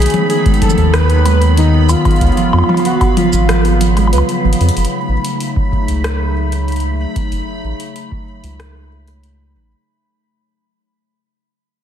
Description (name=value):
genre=IDM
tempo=94 BPM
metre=4/4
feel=straight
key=F# melodic minor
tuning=A4 = 441 Hz
part: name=warm velvety synth lead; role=melody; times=0.0-4.4 s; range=D#4 to B4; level=-19 LUFS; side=equal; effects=chorus, ping-pong delay
part: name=warbly tape-like pad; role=sustained chords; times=0.0-9.8 s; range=C#3 to E#5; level=-20 LUFS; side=left 2 dB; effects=chorus, built-in reverb
part: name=harp-like synth pluck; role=arpeggios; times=0.0-4.5 s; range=D#3 to B4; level=-19 LUFS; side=right 5 dB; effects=chorus, ping-pong delay
part: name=round analog bass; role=bass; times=0.0-9.7 s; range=F#1 to E#2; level=-13 LUFS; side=equal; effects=tube saturation
part: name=booming analog drum machine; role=drums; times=0.0-9.4 s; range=hi-hat, rim click, shaker, toms, woodblock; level=-20 LUFS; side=left 2 dB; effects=soft clipping on snare
part: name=bubbling stepped-filter texture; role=texture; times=0.0-9.9 s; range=B5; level=-25 LUFS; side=right 1 dB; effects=chorus, built-in reverb
part: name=electronic kick drum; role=drums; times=0.5-8.2 s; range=none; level=-16 LUFS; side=equal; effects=none
room=digital ambience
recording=dense, heavily limited modern master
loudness=-11 LUFS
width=side -9 dB against mid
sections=0.0-4.8 A section; 4.8-9.9 B section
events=kick drops out 3.5-4.8; drum fill 4.4-4.8; fade-out 4.8-9.9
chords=0.0 G#m7; 2.2 C#7; 4.8 F#m6